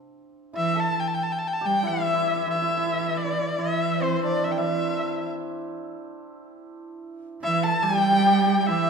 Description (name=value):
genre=chinese traditional, Chinese chamber ensemble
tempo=70 BPM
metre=4/4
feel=straight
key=unclear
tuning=A4 = 442 Hz
part: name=hammered dulcimer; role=second line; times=0.0-8.9 s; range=C4 to A4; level=-31 LUFS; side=right 2 dB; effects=none
part: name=breathy bright low xiao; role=second line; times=0.5-8.9 s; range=C5 to A5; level=-29 LUFS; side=left 7 dB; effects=none
part: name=warm cello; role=second line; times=0.5-8.9 s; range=E3 to G3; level=-27 LUFS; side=right 6 dB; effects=none
part: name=rich erhu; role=melody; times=0.6-8.9 s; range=C5 to A5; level=-24 LUFS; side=left 2 dB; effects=none
room=wet recital hall reverb, RT60 1.8 s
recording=recorded in a church or concert hall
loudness=-22 LUFS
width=side -5 dB against mid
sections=0.1-8.9 A section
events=none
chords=none